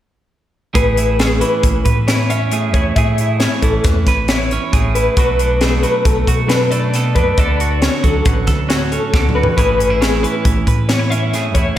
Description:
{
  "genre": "math rock and midwest emo",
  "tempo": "136 BPM",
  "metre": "5/4",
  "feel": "straight",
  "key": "A major",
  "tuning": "A4 = 440 Hz",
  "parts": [
    { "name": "twelve-string electric guitar", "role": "accompaniment", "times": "0.7-11.8 s", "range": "E2 to B4", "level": "-20 LUFS", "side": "right 5 dB", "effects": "slapback echo" },
    { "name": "fingered electric bass", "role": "bass", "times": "0.7-11.7 s", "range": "A1 to B2", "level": "-18 LUFS", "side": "equal", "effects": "none" },
    { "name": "electric guitar through a small old amp", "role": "arpeggios", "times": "0.8-11.8 s", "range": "G#4 to E5", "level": "-19 LUFS", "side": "left 2 dB", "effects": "tremolo, digital delay, slapback echo" },
    { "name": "crisp fusion drum kit", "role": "drums", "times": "0.8-11.7 s", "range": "hi-hat, kick drum, snare drum, toms", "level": "-17 LUFS", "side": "equal", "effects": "none" }
  ],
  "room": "moderate lush hall reverb, RT60 1.7 s",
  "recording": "big arena sound",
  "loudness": "-13 LUFS",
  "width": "side -12 dB against mid",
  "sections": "0.7-11.8 A section",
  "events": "drum fill 9.1-9.6",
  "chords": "0.7 Amaj9; 5.2 Bm7; 7.4 Dmaj7; 9.6 Amaj9"
}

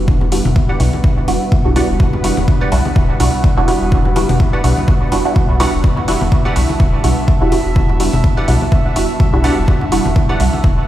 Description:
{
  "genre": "dub techno",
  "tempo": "125 BPM",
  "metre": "4/4",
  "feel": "swing 56% on 16ths",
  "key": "E minor",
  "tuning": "A4 = 440 Hz",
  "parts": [
    { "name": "dark analog pad", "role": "sustained chords", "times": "0.0-10.9 s", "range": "G3 to A5", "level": "-24 LUFS", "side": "right 2 dB", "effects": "chorus, sidechain pumping" },
    { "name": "filtered dub chord stab", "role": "stabs", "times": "0.0-10.6 s", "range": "G3 to F#4", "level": "-19 LUFS", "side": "right 1 dB", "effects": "chorus, phaser, sidechain pumping, dub echo" },
    { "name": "warm sub bass", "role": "bass", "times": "0.0-10.8 s", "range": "D1 to B1", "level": "-17 LUFS", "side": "equal", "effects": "sidechain pumping" },
    { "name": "bubbling stepped-filter texture", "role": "texture", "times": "0.0-10.9 s", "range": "B3 to E5", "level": "-27 LUFS", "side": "right 1 dB", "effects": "chorus, built-in reverb, sidechain pumping" },
    { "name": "electronic kick drum", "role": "drums", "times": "0.1-10.7 s", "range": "none", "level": "-14 LUFS", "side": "equal", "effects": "overdrive, small room ambience" },
    { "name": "electronic congas and toms", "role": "percussion", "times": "0.2-10.6 s", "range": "none", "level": "-22 LUFS", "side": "left 2 dB", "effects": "sidechain pumping on perc, small room ambience, sidechain pumping on toms, dub echo" },
    { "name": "electronic hi-hat", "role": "drums", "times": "0.3-10.5 s", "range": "none", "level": "-28 LUFS", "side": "left 1 dB", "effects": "overdrive, small room ambience" },
    { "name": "wavetable chord stab", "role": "riff", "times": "0.7-10.4 s", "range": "G4 to F#5", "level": "-27 LUFS", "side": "right 2 dB", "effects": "phaser, sidechain pumping, dub echo" }
  ],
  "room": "light reverb, digital ambience",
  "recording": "played on a big sound system in a bare room, stone room reverb",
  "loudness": "-11 LUFS",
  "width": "side -13 dB against mid",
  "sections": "0.0-10.9 A section",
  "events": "none",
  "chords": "0.0 Em9"
}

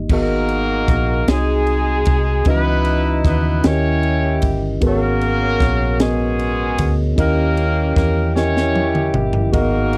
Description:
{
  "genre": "slow gospel",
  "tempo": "51 BPM (dotted quarters)",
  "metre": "6/8",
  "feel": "straight",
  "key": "G# minor",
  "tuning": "A4 = 440 Hz",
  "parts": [
    { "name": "mellow tine electric piano", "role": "accompaniment", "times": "0.0-10.0 s", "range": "G#2 to D#5", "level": "-23 LUFS", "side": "equal", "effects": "none" },
    { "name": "hollow-body short-scale fingered electric bass", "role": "bass", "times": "0.0-10.0 s", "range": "G1 to E2", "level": "-22 LUFS", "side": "equal", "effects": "none" },
    { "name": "mellow horn section", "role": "melody", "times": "0.1-10.0 s", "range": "G#3 to C#5", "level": "-23 LUFS", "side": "equal", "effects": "none" },
    { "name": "crisp fusion drum kit", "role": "drums", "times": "0.1-10.0 s", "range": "crash cymbal, kick drum, ride cymbal, snare drum, toms", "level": "-22 LUFS", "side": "equal", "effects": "none" }
  ],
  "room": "little or no reverb",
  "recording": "dry, close 1970s-style studio recording",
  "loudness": "-17 LUFS",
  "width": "mono",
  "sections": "0.1-10.0 A section",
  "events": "drum fill 8.4-9.5",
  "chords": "0.1 G#m9; 1.3 G#7/B#; 2.5 C#m11; 3.6 D#7b9; 4.8 G#m11; 7.2 D#7b9"
}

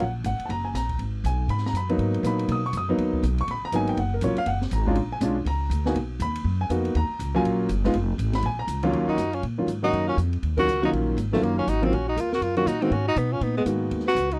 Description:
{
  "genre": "jazz, small-group swing and bop",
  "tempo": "242 BPM",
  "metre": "4/4",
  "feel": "swing 60% on 8ths",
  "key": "Eb minor",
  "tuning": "A4 = 441 Hz",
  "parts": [
    { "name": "warm baby grand piano", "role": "accompaniment", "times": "0.0-14.0 s", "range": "Eb2 to Eb6", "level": "-28 LUFS", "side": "equal", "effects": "none" },
    { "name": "upright bass", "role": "bass", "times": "0.0-14.4 s", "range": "F1 to Cb3", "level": "-29 LUFS", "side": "equal", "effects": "none" },
    { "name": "open jazz drum kit", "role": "drums", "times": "0.0-14.4 s", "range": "crash cymbal, hi-hat, kick drum, ride cymbal, snare drum", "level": "-41 LUFS", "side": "equal", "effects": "none" },
    { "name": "breathy tenor saxophone", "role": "melody", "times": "9.1-14.4 s", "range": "Ab3 to Gb4", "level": "-28 LUFS", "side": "equal", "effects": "none" },
    { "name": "clear alto saxophone", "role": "second line", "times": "9.1-14.4 s", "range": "Cb4 to Cb5", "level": "-32 LUFS", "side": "equal", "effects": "none" }
  ],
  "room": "little or no reverb",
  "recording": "dry, close 1970s-style studio recording",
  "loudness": "-25 LUFS",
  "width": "mono",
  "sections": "0.0-8.9 A section; 8.9-14.4 B section",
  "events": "band accent 10.6",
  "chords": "0.0 Ebm (rootless); 1.0 Abm7; 4.0 Gbmaj9; 5.0 Bb7#9; 6.0 Bmaj7#11; 6.9 Ebm7; 7.9 Fdim; 8.4 Bbm; 8.9 Ebm7; 12.9 Abm7"
}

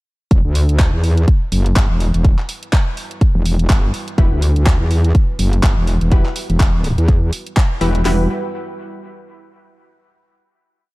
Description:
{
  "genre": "bass house",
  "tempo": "124 BPM",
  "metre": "4/4",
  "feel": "swing 57% on 16ths",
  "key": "E minor",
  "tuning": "A4 = 440 Hz",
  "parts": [
    { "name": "dark analog pad", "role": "sustained chords", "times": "0.3-8.3 s", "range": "G3 to B4", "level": "-30 LUFS", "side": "right 2 dB", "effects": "chorus, vintage 12-bit sampler grit, sidechain pumping" },
    { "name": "metallic wobble bass", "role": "bass", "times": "0.3-8.3 s", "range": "E1 to E2", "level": "-15 LUFS", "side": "equal", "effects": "chorus, sidechain pumping" },
    { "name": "garage drum kit", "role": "drums", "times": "0.3-8.0 s", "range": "handclaps, hi-hat", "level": "-24 LUFS", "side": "equal", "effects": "overdrive" },
    { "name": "house drum kit", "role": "drums", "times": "0.3-8.2 s", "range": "hi-hat, kick drum, snare drum", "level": "-14 LUFS", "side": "equal", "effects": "none" },
    { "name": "orchestra-hit-like synth stab", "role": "stabs", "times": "4.2-8.2 s", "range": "E4 to B4", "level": "-26 LUFS", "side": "left 4 dB", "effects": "built-in reverb, sidechain pumping, dub echo" }
  ],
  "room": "little or no reverb",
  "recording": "dark, warm production",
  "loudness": "-13 LUFS",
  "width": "side -21 dB against mid",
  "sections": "0.3-8.1 drop; 8.1-10.0 final chord",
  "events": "drop 0.3-8.1",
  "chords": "0.3 Emadd9"
}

